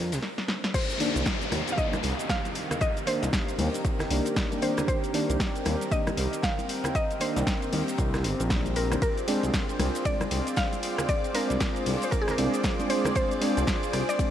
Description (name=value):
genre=deep house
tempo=116 BPM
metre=4/4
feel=swing 60% on 16ths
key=C minor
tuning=A4 = 440 Hz
part: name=warm analog pad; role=sustained chords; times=0.0-14.3 s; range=Eb3 to C5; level=-33 LUFS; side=equal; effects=chorus, sidechain pumping
part: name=smooth gliding synth bass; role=bass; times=0.0-14.0 s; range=G1 to F2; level=-28 LUFS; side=equal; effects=sidechain pumping
part: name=string machine, violins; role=texture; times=0.0-0.2, 9.0-14.3 s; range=Bb4 to D6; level=-39 LUFS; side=equal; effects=ensemble chorus, sidechain pumping
part: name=deep house drum kit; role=drums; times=0.1-14.3 s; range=crash cymbal, hi-hat, ride cymbal, rim click, shaker, snare drum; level=-33 LUFS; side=equal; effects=overdrive
part: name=deep reggae drum kit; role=drums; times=0.1-14.3 s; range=hi-hat, snare drum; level=-44 LUFS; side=left 3 dB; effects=none
part: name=mallet-like synth pluck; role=melody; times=0.7-14.3 s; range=Ab4 to F5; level=-33 LUFS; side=equal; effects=chorus, cassette tape, diffuse ambient delay
part: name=electronic kick drum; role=drums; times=0.7-14.3 s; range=none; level=-29 LUFS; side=equal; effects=overdrive
part: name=downlifter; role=sound effects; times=0.7-4.9 s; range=none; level=-35 LUFS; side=left 1 dB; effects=none
part: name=mellow FM electric piano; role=stabs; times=1.0-14.3 s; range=Eb3 to D4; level=-33 LUFS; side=equal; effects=chorus, tremolo, sidechain pumping, analog delay
part: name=congas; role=percussion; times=1.5-14.1 s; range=none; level=-38 LUFS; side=left 3 dB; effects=sidechain pumping on perc
room=moderate huge ambient reverb, RT60 8.4 s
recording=dreamy mix soaked in reverb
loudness=-24 LUFS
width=side -10 dB against mid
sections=0.7-14.3 A section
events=drum fill 0.2-0.7; drop 0.7-14.3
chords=0.0 Bb7/C; 0.7 Cm7; 9.0 Bb7/C